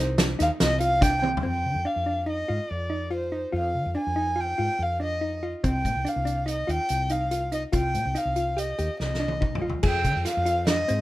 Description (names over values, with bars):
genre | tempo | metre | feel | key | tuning
progressive instrumental, band music in an uneven meter | 143 BPM | 5/4 | straight | unclear | A4 = 439 Hz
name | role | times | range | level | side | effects
thumb-piano-like synth pluck | arpeggios | 0.0-11.0 s | C4 to Ab4 | -31 LUFS | left 1 dB | chorus
woody fretless electric bass | bass | 0.0-11.0 s | C2 to D3 | -29 LUFS | equal | wide subtle chorus
loose indie drum kit | drums | 0.2-1.5, 5.6-11.0 s | crash cymbal, hi-hat, kick drum, snare drum, toms | -27 LUFS | equal | none
dark violin | melody | 0.4-11.0 s | C5 to Ab5 | -27 LUFS | equal | none
room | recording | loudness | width
small room ambience | rough home demo mix | -23 LUFS | side -16 dB against mid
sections
0.0-1.4 A section; 1.4-9.8 B section; 9.8-11.0 C section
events
violin solo 0.0-1.4; drum fill 1.2, 9.0-9.8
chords
0.0 Cm; 1.4 N.C.; 5.6 Cm; 9.8 Fm